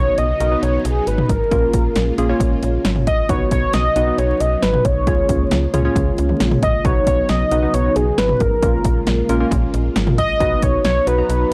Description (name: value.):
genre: synth-pop.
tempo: 135 BPM.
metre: 4/4.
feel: straight.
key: unclear.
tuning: A4 = 439 Hz.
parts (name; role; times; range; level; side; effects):
warm velvety synth lead; melody; 0.0-11.5 s; Ab4 to Eb5; -22 LUFS; equal; chorus.
warm analog keys; accompaniment; 0.0-11.5 s; Bb3 to Bb5; -26 LUFS; equal; chorus.
string machine, violas; sustained chords; 0.0-11.5 s; Db3 to F4; -29 LUFS; equal; ensemble chorus.
slap-like FM bass; bass; 0.0-11.4 s; Ab1 to Db2; -23 LUFS; equal; none.
punchy analog drum machine; drums; 0.2-11.4 s; hi-hat, kick drum, snare drum, toms; -22 LUFS; equal; none.
room: light reverb.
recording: dry, gritty hardware recording, vinyl crackle.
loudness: -17 LUFS.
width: mono.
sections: 0.0-11.5 A section.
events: none.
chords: 0.0 Cbadd9; 1.5 Bbm7; 3.3 Cbadd9; 5.1 Db6; 6.8 Cbadd9; 8.6 Bbm7; 10.4 Cbadd9.